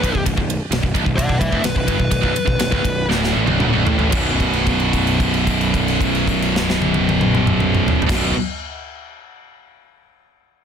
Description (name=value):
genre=heavy metal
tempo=112-132 BPM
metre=4/4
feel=straight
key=B minor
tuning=A4 = 440 Hz
part: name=high-gain lead guitar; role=melody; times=0.0-3.0 s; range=B4 to F#5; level=-23 LUFS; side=left 3 dB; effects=distortion, ping-pong delay
part: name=high-gain distorted guitar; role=riff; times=0.0-8.3 s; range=B1 to B2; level=-22 LUFS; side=left 12 dB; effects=distortion
part: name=high-gain distorted guitar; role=riff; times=0.0-8.3 s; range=B1 to B2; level=-21 LUFS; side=right 13 dB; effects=distortion
part: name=fuzz picked electric bass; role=bass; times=0.0-8.3 s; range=B0 to A1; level=-23 LUFS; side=equal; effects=overdrive
part: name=modern studio drum kit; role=drums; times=0.0-8.2 s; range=crash cymbal, kick drum, ride cymbal, snare drum, toms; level=-21 LUFS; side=equal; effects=soft clipping on snare
room=light reverb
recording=dense, heavily limited modern master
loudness=-15 LUFS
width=side -7 dB against mid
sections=0.0-4.1 A section; 4.1-8.4 B section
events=lead electric guitar solo 0.0-4.1; slowing down 0.2-4.1; drum fill 3.1-4.1; held note 4.1-8.1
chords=0.0 Bm; 4.1 B5